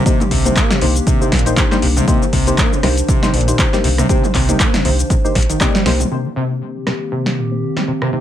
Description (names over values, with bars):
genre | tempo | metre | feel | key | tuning
acid house | 119 BPM | 4/4 | swing 56% on 16ths | C minor | A4 = 440 Hz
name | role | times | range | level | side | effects
warbly tape-like pad | sustained chords | 0.0-8.2 s | Eb3 to C5 | -24 LUFS | left 1 dB | chorus, built-in reverb, sidechain pumping
overdriven acid bass | riff | 0.0-8.2 s | Bb2 to Bb3 | -20 LUFS | equal | distortion, wide subtle chorus, sidechain pumping, ping-pong delay
deep mellow chord stab | stabs | 0.1-8.2 s | Bb3 to D5 | -22 LUFS | left 3 dB | chorus, ping-pong delay
electro analog drum machine | drums | 0.1-8.1 s | handclaps, hi-hat, rim click, shaker, snare drum, toms | -19 LUFS | equal | none
electronic kick drum | drums | 0.1-5.7 s | none | -17 LUFS | equal | none
saturated sub bass | bass | 0.3-6.0 s | Bb1 to C2 | -18 LUFS | equal | sidechain pumping
room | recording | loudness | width
light reverb | none | -13 LUFS | side -11 dB against mid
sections
0.0-6.1 A section; 6.1-8.2 B section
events
drop 0.0-6.1; drum fill 5.4-6.1; filter sweep on acid bass 6.1-8.2; filter sweep on synth stab 6.1-8.2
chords
0.0 Cm7